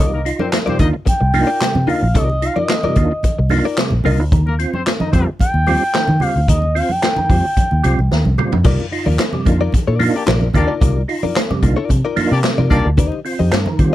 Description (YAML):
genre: funk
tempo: 111 BPM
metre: 4/4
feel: straight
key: C minor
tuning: A4 = 440 Hz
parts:
  - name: expressive synth lead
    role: melody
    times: 0.0-8.3 s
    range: Eb5 to G5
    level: -20 LUFS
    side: equal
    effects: chorus
  - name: direct-recorded clean electric guitar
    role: accompaniment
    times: 0.0-4.2, 8.6-13.7 s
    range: Eb4 to Eb5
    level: -22 LUFS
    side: left 6 dB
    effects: analog chorus
  - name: percussive tonewheel organ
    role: stabs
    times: 0.0-13.9 s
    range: C3 to F4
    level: -20 LUFS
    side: right 2 dB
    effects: chorus vibrato, fast rotary speaker
  - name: vintage muted fingered electric bass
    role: bass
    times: 0.0-13.9 s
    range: Bb1 to Eb3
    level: -16 LUFS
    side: equal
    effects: none
  - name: clear horn section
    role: second line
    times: 0.1-0.9, 4.5-5.2, 10.2-12.9 s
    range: Bb3 to Eb5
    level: -22 LUFS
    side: left 4 dB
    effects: none
  - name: swinging big-band drum kit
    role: drums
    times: 0.3-13.9 s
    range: crash cymbal, handclaps, hi-hat, kick drum, snare drum, toms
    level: -18 LUFS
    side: equal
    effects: none
  - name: congas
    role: percussion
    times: 0.4-13.9 s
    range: none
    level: -24 LUFS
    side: right 2 dB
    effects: none
room: little or no reverb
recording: none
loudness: -14 LUFS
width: side -14 dB against mid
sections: 0.0-8.7 A section; 8.7-13.9 B section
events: analog synth lead solo 0.0-8.7; drum fill 8.1-8.7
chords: 0.0 Cm11; 4.3 Eb6; 8.7 Cm11; 13.0 Eb6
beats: 0.53 1.07 1.61 | 2.15 2.69 3.24 3.78 | 4.32 4.86 5.40 5.95 | 6.49 7.03 7.57 8.11 | 8.65 9.19 9.73 10.28 | 10.82 11.36 11.90 12.44 | 12.98 13.52